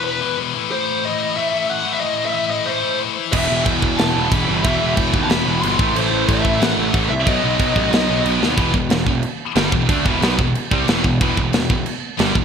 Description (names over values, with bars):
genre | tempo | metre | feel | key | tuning
heavy metal | 183 BPM | 4/4 | straight | E minor | A4 = 439 Hz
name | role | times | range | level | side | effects
high-gain lead guitar | melody | 0.0-8.3 s | B4 to C6 | -22 LUFS | left 1 dB | distortion
scooped high-gain guitar | riff | 0.0-12.4 s | E2 to D4 | -23 LUFS | left 10 dB | distortion
crunchy overdriven guitar | riff | 3.3-12.4 s | E2 to D4 | -24 LUFS | right 1 dB | none
heavy high-gain guitar | riff | 3.3-12.4 s | E2 to D4 | -23 LUFS | right 12 dB | distortion
fuzz picked electric bass | bass | 3.3-12.4 s | E1 to D#2 | -23 LUFS | right 1 dB | overdrive
tight metal drum kit | drums | 3.3-12.4 s | china cymbal, crash cymbal, kick drum, snare drum | -20 LUFS | equal | none
room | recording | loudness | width
moderate lush hall reverb, RT60 1.9 s, studio ambience | bright 1980s-style digital production | -16 LUFS | side -7 dB against mid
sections
0.0-8.6 A section; 8.6-12.4 B section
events
half time 0.0-8.6; drum fill 8.4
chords
0.0 E5; 0.6 Am; 3.3 Em; 5.8 Am; 7.3 B; 8.6 Em